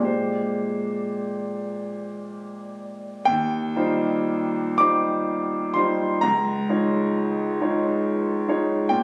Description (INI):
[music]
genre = classical, impressionist solo piano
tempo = 55-69 BPM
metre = 3/4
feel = rubato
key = Eb major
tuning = A4 = 440 Hz
[part]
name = clear concert grand piano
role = solo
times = 0.0-9.0 s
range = Db2 to D6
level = -24 LUFS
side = equal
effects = none
[sound]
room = moderate recital hall reverb, RT60 1.5 s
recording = recorded on a phone in the room, club reverb, compression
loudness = -24 LUFS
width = mono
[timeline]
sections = 0.0-3.3 A section; 3.3-9.0 B section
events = none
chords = 0.1 Bb13; 3.3 Eb69; 6.2 Db69